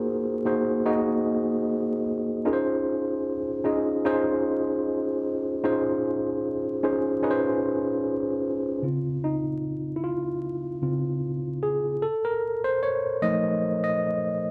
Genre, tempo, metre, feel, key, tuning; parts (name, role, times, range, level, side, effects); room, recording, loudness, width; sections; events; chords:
soul; 75 BPM; 4/4; swing 54% on 16ths; Db major; A4 = 441 Hz
tine electric piano; solo; 0.0-14.5 s; Db3 to Eb5; -26 LUFS; equal; overdrive
moderate booth ambience, RT60 0.2 s; dry, close 1970s-style studio recording, vinyl crackle; -26 LUFS; mono
0.0-8.8 A section; 8.8-14.5 B section
tine electric piano solo 8.8-14.5
0.0 Ab7; 2.5 Dbmaj9; 8.8 Dbmaj7; 12.0 F7